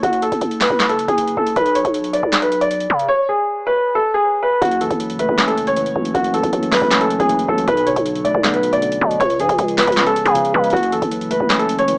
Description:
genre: hip hop, trap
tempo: 157 BPM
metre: 4/4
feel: half-time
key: F# minor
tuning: A4 = 435 Hz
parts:
  - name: warm baby grand piano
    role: melody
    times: 0.0-12.0 s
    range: F#4 to D5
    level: -17 LUFS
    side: equal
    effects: none
  - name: growling 808-style bass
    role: bass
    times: 0.0-12.0 s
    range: F#1 to C#3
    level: -20 LUFS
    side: equal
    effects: none
  - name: booming analog drum machine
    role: drums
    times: 0.0-12.0 s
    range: handclaps, hi-hat, kick drum, snare drum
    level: -21 LUFS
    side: equal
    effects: overdrive
  - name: tine electric piano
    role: accompaniment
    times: 4.6-12.0 s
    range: F#2 to C#4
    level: -24 LUFS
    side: equal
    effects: medium tremolo
room: digital ambience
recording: dry, gritty hardware recording, small speaker sound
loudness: -14 LUFS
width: side -27 dB against mid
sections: 0.0-4.6 A section; 4.6-12.0 B section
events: drums muted 3.1-4.6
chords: 0.0 F#m; 1.6 Bm; 3.1 N.C.; 4.6 F#m7; 7.7 Bm7; 9.2 C#7; 10.7 F#m7

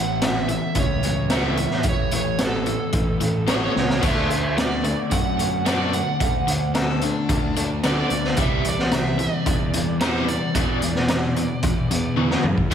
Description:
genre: classic rock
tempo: 110 BPM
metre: 4/4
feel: straight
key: D mixolydian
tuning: A4 = 441 Hz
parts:
  - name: overdriven slide guitar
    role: melody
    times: 0.0-12.1 s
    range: A4 to F#5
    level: -28 LUFS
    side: right 3 dB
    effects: slapback echo, tape echo
  - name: overdriven electric guitar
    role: riff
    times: 0.0-12.7 s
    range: E2 to D4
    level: -27 LUFS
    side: left 10 dB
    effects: tremolo, slapback echo
  - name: overdriven semi-hollow guitar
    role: riff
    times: 0.0-12.7 s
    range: E2 to E4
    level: -29 LUFS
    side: right 11 dB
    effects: spring reverb, slapback echo
  - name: fuzz picked electric bass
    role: bass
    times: 0.0-12.7 s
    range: A1 to F#2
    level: -27 LUFS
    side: equal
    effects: overdrive
  - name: raw garage drum kit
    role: drums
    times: 0.2-12.7 s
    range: crash cymbal, hi-hat, kick drum, snare drum, toms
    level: -23 LUFS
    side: equal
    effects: none
  - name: octave-fuzz lead guitar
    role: second line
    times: 6.8-7.7 s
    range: D4 to A4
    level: -29 LUFS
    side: left 4 dB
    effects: distortion, slapback echo
room: moderate recital hall reverb, RT60 1.6 s, studio ambience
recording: big arena sound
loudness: -19 LUFS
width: side -8 dB against mid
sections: 0.0-12.7 A section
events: drum fill 3.8, 12.2-12.7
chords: 0.0 A; 4.0 D; 8.4 C; 10.6 E5

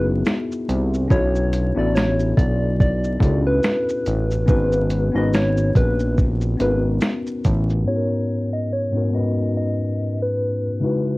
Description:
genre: lo-fi hip hop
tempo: 71 BPM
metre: 4/4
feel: swing 56% on 16ths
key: unclear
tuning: A4 = 440 Hz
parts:
  - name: soft struck synth lead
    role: melody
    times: 0.0-11.2 s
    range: B4 to D#5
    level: -24 LUFS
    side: equal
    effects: chorus, tremolo, low-pass filter, cassette tape
  - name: mellow tine electric piano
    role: accompaniment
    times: 0.0-11.2 s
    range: G#2 to B4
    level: -23 LUFS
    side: left 2 dB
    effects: medium stereo tremolo, cassette tape, low-pass filter
  - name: fat analog bass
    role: bass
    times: 0.0-7.8 s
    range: F#1 to C#2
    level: -20 LUFS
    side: equal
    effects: transformer saturation
  - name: dusty soul sampler-style drum kit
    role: drums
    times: 0.3-7.9 s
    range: finger snaps, hi-hat, kick drum, shaker, snare drum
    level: -19 LUFS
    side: equal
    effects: cassette tape
room: light reverb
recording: home recording on cassette, vinyl crackle, low-pass filter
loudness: -18 LUFS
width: side -21 dB against mid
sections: 0.0-7.9 A section; 7.9-11.2 B section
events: none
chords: 0.0 C#m11 (rootless); 1.1 Bm11; 4.5 G#m11

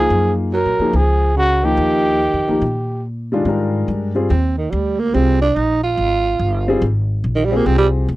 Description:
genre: jazz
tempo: 143 BPM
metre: 4/4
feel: swing 66% on 8ths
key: Ab lydian from 3.5 s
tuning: A4 = 440 Hz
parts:
  - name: breathy trumpet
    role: melody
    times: 0.0-3.0 s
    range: Gb4 to Bb4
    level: -18 LUFS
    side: equal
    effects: none
  - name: growling tenor saxophone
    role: second line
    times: 0.0-7.9 s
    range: Db3 to F4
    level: -19 LUFS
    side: right 4 dB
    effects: none
  - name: warm concert grand piano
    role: accompaniment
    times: 0.0-8.1 s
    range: Eb3 to Bb4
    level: -19 LUFS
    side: left 2 dB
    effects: none
  - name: upright bass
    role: bass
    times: 0.0-8.2 s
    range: G1 to Db3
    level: -19 LUFS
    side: equal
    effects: none
room: light reverb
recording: dry, close 1970s-style studio recording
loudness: -15 LUFS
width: side -17 dB against mid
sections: 0.0-3.5 A section; 3.5-8.2 B section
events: tenor saxophone solo 3.5-8.2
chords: 0.0 Gbmaj9; 1.8 Ebadd9; 3.5 Abmaj9

